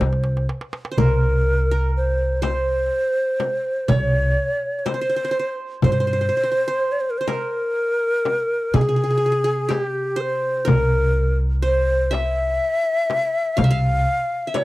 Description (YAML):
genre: Arabic maqam ensemble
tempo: 124 BPM (eighths)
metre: 10/8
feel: straight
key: C maqam hijaz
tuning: A4 = 440 Hz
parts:
  - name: breathy ney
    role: melody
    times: 0.0-14.6 s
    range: G4 to F5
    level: -21 LUFS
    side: equal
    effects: none
  - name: qanun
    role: second line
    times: 0.0-14.6 s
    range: G4 to F5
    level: -29 LUFS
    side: right 4 dB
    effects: none
  - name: upright bass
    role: bass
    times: 0.0-14.0 s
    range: C2 to C3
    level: -21 LUFS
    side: equal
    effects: none
  - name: darbuka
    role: percussion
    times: 0.0-14.6 s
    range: none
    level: -24 LUFS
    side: right 2 dB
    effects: none
  - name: frame drum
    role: percussion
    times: 0.0-14.6 s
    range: none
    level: -25 LUFS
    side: left 6 dB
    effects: none
room: small room ambience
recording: dry, close 1970s-style studio recording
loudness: -18 LUFS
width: side -18 dB against mid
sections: 1.0-14.6 A section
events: drum fill 0.0-1.0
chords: none